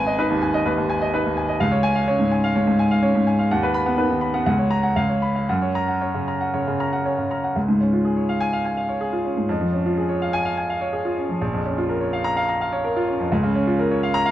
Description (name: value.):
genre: classical, virtuoso piano study.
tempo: 126 BPM.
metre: 4/4.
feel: rubato.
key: F# major, Db major from 7.6 s.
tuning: A4 = 441 Hz.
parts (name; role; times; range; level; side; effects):
clear grand piano; solo; 0.0-14.3 s; G#1 to B5; -19 LUFS; equal; none.
room: moderate recital hall reverb, RT60 1.5 s.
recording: close, detailed microphones.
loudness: -19 LUFS.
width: side -13 dB against mid.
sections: 0.0-7.6 A section; 7.6-14.3 B section.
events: none.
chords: 0.0 G#m; 1.6 C#; 3.5 B/D#; 4.5 F#/C#; 5.0 C#7; 5.5 F#; 7.6 Db; 9.5 Db/F; 11.4 Bbm; 13.3 Bbm/Db.